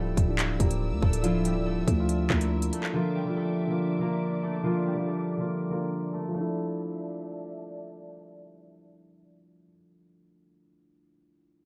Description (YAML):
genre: hip hop, drill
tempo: 141 BPM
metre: 4/4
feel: half-time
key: D minor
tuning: A4 = 440 Hz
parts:
  - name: concert harp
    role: melody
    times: 0.0-9.7 s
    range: F3 to Bb4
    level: -33 LUFS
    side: equal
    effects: low-pass filter, delay
  - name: felt-muted upright piano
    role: accompaniment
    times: 0.0-11.7 s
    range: D3 to G4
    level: -35 LUFS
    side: equal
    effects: low-pass filter
  - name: warm studio string section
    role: sustained chords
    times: 0.0-9.7 s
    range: D4 to E6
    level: -43 LUFS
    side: equal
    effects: low-pass filter
  - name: growling 808-style bass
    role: bass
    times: 0.0-2.7 s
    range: D1 to D2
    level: -31 LUFS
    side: equal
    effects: none
  - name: drill drum kit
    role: drums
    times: 0.2-2.9 s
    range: handclaps, hi-hat, kick drum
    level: -29 LUFS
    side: equal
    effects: none
room: moderate studio reverb, RT60 0.7 s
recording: dark, warm production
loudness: -28 LUFS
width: mono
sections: 0.0-6.3 A section; 6.3-9.7 B section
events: filter sweep 0.0-6.3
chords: 0.0 Dmadd9